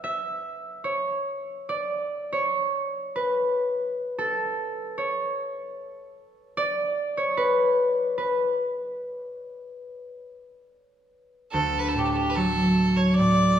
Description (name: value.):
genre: celtic folk, Celtic slow air.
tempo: 66-76 BPM.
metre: 3/4.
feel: rubato.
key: D major.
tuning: A4 = 439 Hz.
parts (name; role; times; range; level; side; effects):
concert harp; accompaniment; 0.0-13.6 s; D2 to F#5; -24 LUFS; equal; none.
clear fiddle; melody; 11.5-13.6 s; G4 to D5; -24 LUFS; right 2 dB; none.
room: wet recital hall reverb, RT60 1.6 s.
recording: recorded in a church or concert hall.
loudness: -23 LUFS.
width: side -9 dB against mid.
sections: 0.0-11.5 A section; 11.5-13.6 B section.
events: harp solo 0.0-11.5.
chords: 0.0 N.C.; 11.5 D.